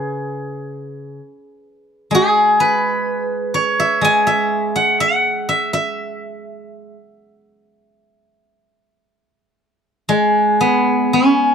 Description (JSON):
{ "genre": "chinese traditional, Chinese solo plucked strings", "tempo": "53-65 BPM", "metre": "4/4", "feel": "rubato", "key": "unclear", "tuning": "A4 = 442 Hz", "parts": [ { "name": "steel-string zither", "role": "solo", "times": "0.0-11.5 s", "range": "C#3 to G#5", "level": "-15 LUFS", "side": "equal", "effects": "none" } ], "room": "little or no reverb", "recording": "dry, close 1970s-style studio recording", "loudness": "-14 LUFS", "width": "side -7 dB against mid", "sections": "0.0-10.1 A section; 10.1-11.5 A section", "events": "none", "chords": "none" }